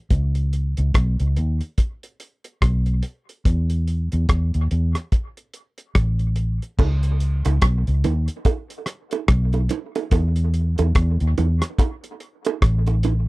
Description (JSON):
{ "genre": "dub reggae", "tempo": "72 BPM", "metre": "4/4", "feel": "swing 60% on 16ths", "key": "unclear", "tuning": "A4 = 441 Hz", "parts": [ { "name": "vintage muted fingered electric bass", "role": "bass", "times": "0.1-13.2 s", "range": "A1 to E2", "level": "-19 LUFS", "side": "equal", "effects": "transformer saturation" }, { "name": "cloth-damped thuddy drum kit", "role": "drums", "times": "0.1-13.3 s", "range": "crash cymbal, hi-hat, kick drum, rim click", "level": "-20 LUFS", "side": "equal", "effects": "none" }, { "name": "bongos", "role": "percussion", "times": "6.8-13.3 s", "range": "none", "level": "-27 LUFS", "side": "right 8 dB", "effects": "dub echo" } ], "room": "little or no reverb", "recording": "dry, close 1970s-style studio recording", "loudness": "-19 LUFS", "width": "side -21 dB against mid", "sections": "0.0-6.8 A section; 6.8-13.3 B section", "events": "none", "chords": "none", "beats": "| 0.11 0.95 1.78 2.62 | 3.45 4.29 5.12 5.96 | 6.79 7.62 8.46 9.29 | 10.12 10.96 11.79 12.62" }